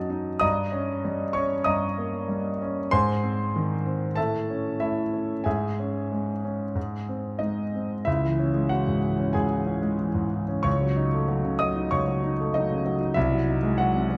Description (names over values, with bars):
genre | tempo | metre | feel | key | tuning
classical, virtuoso piano study | 94 BPM | 4/4 | uneven beats, rubato | C# minor | A4 = 442 Hz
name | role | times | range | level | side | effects
warm concert grand piano | solo | 0.0-14.2 s | B#1 to D#6 | -26 LUFS | equal | none
room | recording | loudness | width
moderate recital hall reverb, RT60 1.9 s | close, detailed microphones | -26 LUFS | mono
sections
0.0-8.1 A section; 8.1-14.2 B section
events
none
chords
0.4 D#7/G; 2.9 G#; 4.2 A; 5.5 C#m/G#; 6.8 G#; 8.1 C#m; 10.7 D#m7b5/C#; 13.2 G#7/B#